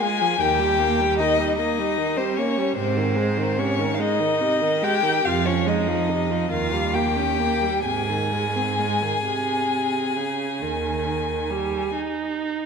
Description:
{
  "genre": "classical, slow romantic movement for string quartet",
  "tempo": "42-51 BPM (dotted quarters)",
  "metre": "12/8",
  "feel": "rubato",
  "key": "Ab major",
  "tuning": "A4 = 440 Hz",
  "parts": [
    { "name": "rich violin", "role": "melody", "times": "0.0-11.9 s", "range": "C5 to Ab5", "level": "-24 LUFS", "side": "left 6 dB", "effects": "none" },
    { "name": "dark violin", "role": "second line", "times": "0.0-11.9 s", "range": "C4 to Ab4", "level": "-27 LUFS", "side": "left 1 dB", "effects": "none" },
    { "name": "rich viola", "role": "accompaniment", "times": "0.0-12.7 s", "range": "C3 to Eb4", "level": "-26 LUFS", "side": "right 4 dB", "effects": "none" },
    { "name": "rich cello", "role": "bass", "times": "0.4-11.7 s", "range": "Eb2 to Ab2", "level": "-28 LUFS", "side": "right 5 dB", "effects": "none" }
  ],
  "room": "wet concert hall reverb, RT60 2.1 s",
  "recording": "minimal, uncompressed stereo recording",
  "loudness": "-20 LUFS",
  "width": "side -6 dB against mid",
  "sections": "0.0-12.7 A section",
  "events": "none",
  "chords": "0.4 Eb; 2.8 Ab; 5.3 Fm; 6.5 Eb7; 7.8 Ab"
}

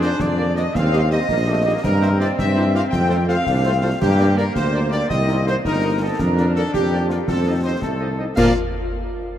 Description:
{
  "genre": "military-style march for wind band",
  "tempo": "110 BPM (dotted quarters)",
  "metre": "6/8",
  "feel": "straight",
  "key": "Bb major",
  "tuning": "A4 = 441 Hz",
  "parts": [
    { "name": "dark trumpet section", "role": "melody", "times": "0.0-8.5 s", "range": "F4 to G5", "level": "-27 LUFS", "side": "equal", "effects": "none" },
    { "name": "clear woodwind section", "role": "second line", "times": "0.0-8.5 s", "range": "G4 to F5", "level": "-29 LUFS", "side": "right 2 dB", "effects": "none" },
    { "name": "large flute ensemble", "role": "second line", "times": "0.0-8.6 s", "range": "F4 to G5", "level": "-25 LUFS", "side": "equal", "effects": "none" },
    { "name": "warm French horn section", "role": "accompaniment", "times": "0.0-8.5 s", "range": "F3 to F4", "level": "-29 LUFS", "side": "left 3 dB", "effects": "none" },
    { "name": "warm trombone section", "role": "sustained chords", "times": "0.0-8.5 s", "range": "F3 to Eb4", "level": "-26 LUFS", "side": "left 1 dB", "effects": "none" },
    { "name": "mellow tuba", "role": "bass", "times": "0.0-8.5 s", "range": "G1 to Bb2", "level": "-20 LUFS", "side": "equal", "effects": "none" },
    { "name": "concert snare drum, concert bass drum and clash cymbals", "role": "drums", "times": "0.0-8.6 s", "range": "none", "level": "-28 LUFS", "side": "equal", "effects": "none" }
  ],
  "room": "wet cathedral reverb, RT60 5.3 s",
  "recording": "in a vast, echoing space",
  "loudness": "-17 LUFS",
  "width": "side -10 dB against mid",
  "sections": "0.0-8.4 A section; 8.4-9.4 B section",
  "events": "none",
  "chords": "0.0 Bb/F; 0.7 Eb; 1.8 C7/G; 2.9 F; 4.0 Gm; 5.1 Cm7; 6.2 Bb/F; 7.3 F7; 8.4 Bb5"
}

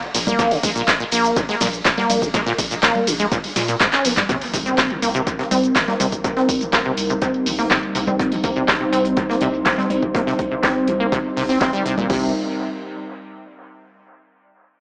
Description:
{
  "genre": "acid house",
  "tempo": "123 BPM",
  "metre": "4/4",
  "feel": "straight",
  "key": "C minor",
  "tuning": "A4 = 441 Hz",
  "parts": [
    { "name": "punchy analog drum machine", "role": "drums", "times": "0.0-12.1 s", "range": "congas, handclaps, hi-hat, ride cymbal, shaker, snare drum", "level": "-20 LUFS", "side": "equal", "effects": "low-pass filter on hats, low-pass filter on snare, low-pass filter on perc, low-pass filter on cymbals, dub echo" },
    { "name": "acid bass, saw", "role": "riff", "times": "0.1-12.3 s", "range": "Ab2 to Db4", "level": "-20 LUFS", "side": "equal", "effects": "lush chorus, sidechain pumping, dub echo" },
    { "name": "saturated sub bass", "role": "bass", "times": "0.1-12.3 s", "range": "Bb1 to Bb2", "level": "-30 LUFS", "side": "equal", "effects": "sidechain pumping" },
    { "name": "deep reggae drum kit", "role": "drums", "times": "0.1-12.0 s", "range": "hi-hat, snare drum", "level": "-31 LUFS", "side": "equal", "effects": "high-pass filter on hats, high-pass filter on snare, high-pass filter on room, dub echo" },
    { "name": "punchy analog drum machine", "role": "drums", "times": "0.3-12.2 s", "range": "crash cymbal, kick drum, toms", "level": "-25 LUFS", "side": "equal", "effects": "none" },
    { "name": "dark analog pad", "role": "sustained chords", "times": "4.3-12.3 s", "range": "G3 to C5", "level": "-24 LUFS", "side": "equal", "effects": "chorus, sidechain pumping" },
    { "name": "impact", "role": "sound effects", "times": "4.3-6.2 s", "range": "none", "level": "-34 LUFS", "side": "equal", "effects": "none" }
  ],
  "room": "moderate plate reverb, RT60 1.4 s",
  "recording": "echo-heavy mix, small speaker sound",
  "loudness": "-16 LUFS",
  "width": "side -34 dB against mid",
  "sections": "0.0-4.3 A section; 4.3-12.1 B section; 12.1-14.0 C section",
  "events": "drop 0.0-4.3; drum fill 3.9-4.3; impact 4.3-6.2; filter sweep on drum 4.3-12.1",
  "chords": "0.0 N.C.; 4.3 Cm7"
}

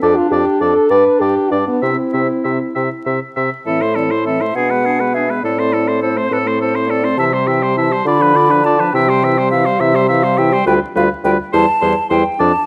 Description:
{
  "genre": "quick classical-period movement for wind quintet",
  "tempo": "68 BPM (dotted quarters)",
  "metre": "6/8",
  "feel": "rubato",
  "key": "C major",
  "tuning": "A4 = 440 Hz",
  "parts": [
    { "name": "mellow hollow silver concert flute", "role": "melody", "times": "0.0-12.7 s", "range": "B4 to B5", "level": "-21 LUFS", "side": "equal", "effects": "none" },
    { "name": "clear oboe", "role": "second line", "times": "0.0-12.5 s", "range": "G#4 to E5", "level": "-22 LUFS", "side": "equal", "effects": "none" },
    { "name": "dark clarinet", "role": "accompaniment", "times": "0.0-12.5 s", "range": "B3 to G4", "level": "-24 LUFS", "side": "equal", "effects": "none" },
    { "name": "warm French horn", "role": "accompaniment", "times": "0.0-12.5 s", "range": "D3 to B4", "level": "-22 LUFS", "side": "equal", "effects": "none" },
    { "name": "mellow bassoon", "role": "bass", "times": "0.0-12.5 s", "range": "D2 to D3", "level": "-20 LUFS", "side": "equal", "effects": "none" }
  ],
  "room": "light reverb",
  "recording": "close, detailed microphones, vinyl crackle",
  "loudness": "-15 LUFS",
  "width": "mono",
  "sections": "0.0-3.7 A section; 3.7-12.7 B section",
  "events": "none",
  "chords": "0.0 Dm/F; 0.9 G5; 1.8 C; 3.7 Am; 4.6 G#dim/B; 5.4 Am; 7.2 C; 8.1 Bdim/D; 8.9 C; 10.7 G7/D; 11.5 C/E"
}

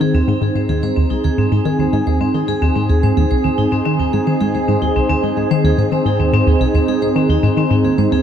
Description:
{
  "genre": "ambient",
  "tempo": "109 BPM",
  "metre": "4/4",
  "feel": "straight",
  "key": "unclear",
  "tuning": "A4 = 440 Hz",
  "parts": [
    { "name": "sweeping resonant pad", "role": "sustained chords", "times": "0.0-8.2 s", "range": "C4 to Ab4", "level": "-18 LUFS", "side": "right 2 dB", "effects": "lush chorus" },
    { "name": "vibraphone with hard mallets", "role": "arpeggios", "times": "0.0-8.2 s", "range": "C4 to C5", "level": "-22 LUFS", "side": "left 4 dB", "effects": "auto-pan, ping-pong delay" },
    { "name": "tight sequenced synth", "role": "riff", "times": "0.0-8.2 s", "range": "C2 to Eb3", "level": "-16 LUFS", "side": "equal", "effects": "chorus, phaser, vintage 12-bit sampler grit, ping-pong delay" }
  ],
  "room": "moderate plate reverb, RT60 2.8 s",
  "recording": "none",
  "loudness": "-13 LUFS",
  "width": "side -9 dB against mid",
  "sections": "0.0-8.2 A section",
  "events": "none",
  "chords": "0.0 Ab"
}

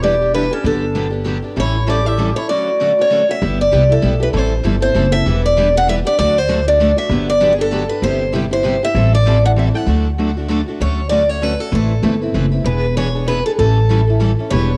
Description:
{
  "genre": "acoustic string swing (jazz manouche)",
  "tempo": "195 BPM",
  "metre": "3/4",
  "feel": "swing 58% on 8ths",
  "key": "D major, G major from 3.4 s, D major from 10.8 s",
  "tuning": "A4 = 440 Hz",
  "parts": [
    { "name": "picked steel-string acoustic guitar", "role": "melody", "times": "0.0-14.8 s", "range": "Ab4 to F#5", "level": "-19 LUFS", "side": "equal", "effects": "none" },
    { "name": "breathy clarinet", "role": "second line", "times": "0.0-3.2, 14.5-14.8 s", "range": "C#4 to G4", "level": "-28 LUFS", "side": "equal", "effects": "cassette tape" },
    { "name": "picked steel-string acoustic guitar", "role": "accompaniment", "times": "0.0-14.7 s", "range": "C3 to B4", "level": "-25 LUFS", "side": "equal", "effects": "cassette tape" },
    { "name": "picked steel-string acoustic guitar", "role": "accompaniment", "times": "0.0-14.7 s", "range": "C3 to B4", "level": "-28 LUFS", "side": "equal", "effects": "cassette tape" },
    { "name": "upright bass", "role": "bass", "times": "0.0-14.8 s", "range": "E1 to D2", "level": "-19 LUFS", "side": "equal", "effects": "none" }
  ],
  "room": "moderate lush hall reverb, RT60 2.5 s",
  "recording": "home recording on cassette",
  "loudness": "-16 LUFS",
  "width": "mono",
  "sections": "0.0-3.4 A section; 3.4-10.8 B section; 10.8-14.8 A section",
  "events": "none",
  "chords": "0.0 Em7; 0.7 Gmaj7; 1.6 A7; 2.5 Dmaj7; 3.4 G6; 4.3 Am7; 5.3 Em7; 6.2 D; 7.1 Gmaj7; 8.0 Cmaj7/G; 9.0 Am7; 9.9 D; 10.8 Dmaj7; 11.7 Amadd9; 12.7 E7; 13.6 A7"
}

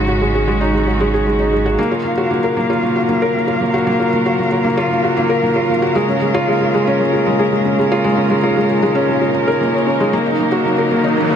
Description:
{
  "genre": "piano and strings electronica",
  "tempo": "115 BPM",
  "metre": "4/4",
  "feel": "straight",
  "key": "unclear",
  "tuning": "A4 = 439 Hz",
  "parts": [
    { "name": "muted string quartet", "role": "sustained chords", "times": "0.0-11.4 s", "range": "Db3 to F5", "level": "-20 LUFS", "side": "equal", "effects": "none" },
    { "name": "felt-muted upright piano", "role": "riff", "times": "0.0-11.4 s", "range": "Ab3 to Db5", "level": "-15 LUFS", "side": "equal", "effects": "digital delay" },
    { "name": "dark detuned saw bass", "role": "bass", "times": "0.0-1.8 s", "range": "Ab1", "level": "-20 LUFS", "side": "right 1 dB", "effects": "none" },
    { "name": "riser", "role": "sound effects", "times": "10.4-11.4 s", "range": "none", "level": "-25 LUFS", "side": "right 2 dB", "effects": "none" }
  ],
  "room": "wet huge ambient reverb, RT60 7.5 s",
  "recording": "high-pass filter",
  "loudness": "-13 LUFS",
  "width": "side -8 dB against mid",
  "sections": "0.0-1.8 A section; 1.8-11.4 B section",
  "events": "build-up 1.8-11.4; riser 10.4-11.4",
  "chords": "0.0 Ab7sus4; 1.8 Gbmaj7; 6.0 Bbm7; 10.1 Ebm7"
}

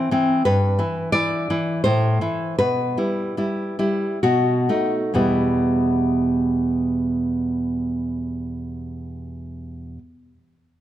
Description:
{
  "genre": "romantic piece for solo classical guitar",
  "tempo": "62-90 BPM",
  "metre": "3/4",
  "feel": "rubato",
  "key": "E minor",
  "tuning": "A4 = 442 Hz",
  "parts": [
    { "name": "nylon-string guitar", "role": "solo", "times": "0.0-10.0 s", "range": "E2 to D5", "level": "-19 LUFS", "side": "equal", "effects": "none" }
  ],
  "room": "moderate recital hall reverb, RT60 1.6 s",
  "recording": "dark, warm production",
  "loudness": "-19 LUFS",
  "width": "side -12 dB against mid",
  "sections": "0.0-5.1 A section; 5.1-10.5 B section",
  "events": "slowing down 0.0-5.1",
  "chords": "0.4 Em/G; 1.8 Am; 2.6 Em/B; 4.2 B7; 5.1 Em"
}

